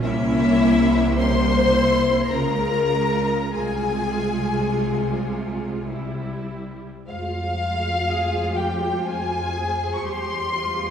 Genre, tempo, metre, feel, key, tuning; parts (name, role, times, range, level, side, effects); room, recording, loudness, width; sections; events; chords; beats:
classical, slow romantic movement for string orchestra; 48-63 BPM; 3/4; rubato; F minor; A4 = 443 Hz
rich symphonic violin section; melody; 0.0-10.9 s; C5 to C6; -30 LUFS; left 4 dB
warm symphonic violin section; second line; 0.0-10.9 s; E4 to Db6; -24 LUFS; left 3 dB
rich studio viola section; accompaniment; 0.0-10.9 s; G3 to G4; -24 LUFS; equal
rich symphonic cello section; bass; 0.0-10.9 s; C3 to Ab4; -29 LUFS; right 1 dB
rich symphonic double bass section; bass; 0.0-10.9 s; C2 to F2; -28 LUFS; right 2 dB
wet scoring stage reverb, RT60 1.9 s; heard from further back in the room; -19 LUFS; side -8 dB against mid
0.0-7.1 A section; 7.1-10.9 B section
0.0 C7b9; 2.3 Db; 3.5 Fm/C; 5.9 C; 7.1 Fm; 10.0 C/E
| 0.02 1.17 2.31 | 3.54 4.75 5.93 | 7.09 8.09 9.05 | 10.04